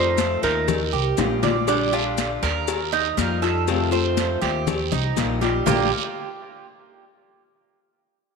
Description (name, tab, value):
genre	latin, Cuban son and guajira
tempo	120 BPM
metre	4/4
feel	straight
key	Bb major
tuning	A4 = 440 Hz
part	nylon-string guitar	melody	0.0-1.1 s	Bb4 to C5	-24 LUFS	equal	none
part	picked steel-string acoustic guitar	accompaniment	0.0-5.9 s	Bb2 to G4	-27 LUFS	left 10 dB	none
part	Cuban tres	arpeggios	0.0-5.9 s	Bb3 to D5	-25 LUFS	right 10 dB	tape echo
part	upright bass	bass	0.0-5.9 s	Bb1 to F2	-27 LUFS	equal	none
part	congas	percussion	0.2-5.8 s	none	-29 LUFS	left 11 dB	none
part	cowbell and bongos	percussion	0.2-5.8 s	none	-29 LUFS	left 10 dB	none
part	guiro	percussion	0.2-5.8 s	none	-31 LUFS	right 14 dB	none
part	maracas	percussion	0.2-5.8 s	none	-36 LUFS	left 12 dB	none
room	moderate plate reverb, RT60 2.7 s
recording	1960s-style stereo with parts hard left and right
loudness	-19 LUFS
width	side -5 dB against mid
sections	0.0-1.7 A section; 1.7-5.7 B section; 5.7-7.7 C section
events	drum fill 1.2-1.7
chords	0.0 F7; 0.7 Ebadd9; 1.7 Bb6; 2.7 Ebadd9; 3.7 F7; 4.7 Ebadd9; 5.7 Bb6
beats	0.19 0.69 1.18 | 1.68 2.18 2.68 3.18 | 3.68 4.18 4.68 5.17 | 5.67